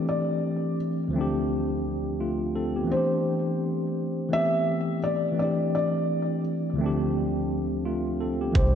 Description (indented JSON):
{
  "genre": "lo-fi hip hop",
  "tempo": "85 BPM",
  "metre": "4/4",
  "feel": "swing 58% on 16ths",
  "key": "unclear",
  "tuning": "A4 = 441 Hz",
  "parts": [
    { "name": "felt-muted upright piano", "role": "melody", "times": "0.0-8.8 s", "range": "C5 to E5", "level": "-29 LUFS", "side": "equal", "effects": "ping-pong delay" },
    { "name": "tine electric piano", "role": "accompaniment", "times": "0.0-8.8 s", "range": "D2 to A4", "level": "-25 LUFS", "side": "left 1 dB", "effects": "fast stereo tremolo, cassette tape" },
    { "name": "upright bass", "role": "bass", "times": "8.6-8.8 s", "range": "C2", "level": "-22 LUFS", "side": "equal", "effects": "none" },
    { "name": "lo-fi sampler-style drum kit", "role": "drums", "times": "8.6-8.7 s", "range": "hi-hat, kick drum", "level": "-21 LUFS", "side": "equal", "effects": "none" }
  ],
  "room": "wet lush hall reverb, RT60 2.4 s",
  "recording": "dreamy mix soaked in reverb, cassette tape",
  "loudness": "-24 LUFS",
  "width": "side -8 dB against mid",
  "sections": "0.0-8.6 A section",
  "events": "none",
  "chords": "0.0 D9sus4; 1.1 G9sus4/D; 2.9 C6; 4.3 Am9; 5.4 D9sus4; 6.8 G9sus4/D"
}